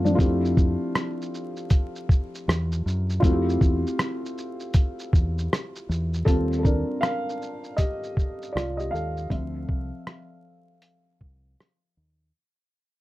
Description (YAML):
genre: lo-fi hip hop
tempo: 79 BPM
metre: 4/4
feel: swing 65% on 16ths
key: F major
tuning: A4 = 440 Hz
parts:
  - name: felt-muted upright piano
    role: accompaniment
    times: 0.0-12.4 s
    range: F3 to F5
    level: -28 LUFS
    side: equal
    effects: low-pass filter
  - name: deep dub fingered electric bass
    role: bass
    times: 0.0-12.3 s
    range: C2 to Gb2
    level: -27 LUFS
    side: equal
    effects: none
  - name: lo-fi sampler-style drum kit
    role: drums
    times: 0.1-11.8 s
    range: hi-hat, kick drum, rim click, shaker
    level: -22 LUFS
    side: equal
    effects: vintage 12-bit sampler grit
room: light reverb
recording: dark, warm production, vinyl crackle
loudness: -23 LUFS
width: side -17 dB against mid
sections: 0.0-6.3 A section; 6.3-12.3 B section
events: fade-out 6.3-12.3; felt piano solo 6.3-12.3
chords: 0.2 Fmaj9; 6.3 Eb69; 9.3 Dm7 (rootless)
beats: | 0.19 0.95 1.71 2.47 | 3.23 3.99 4.75 5.50 | 6.26 7.02 7.78 8.54 | 9.30 10.06 10.82 11.58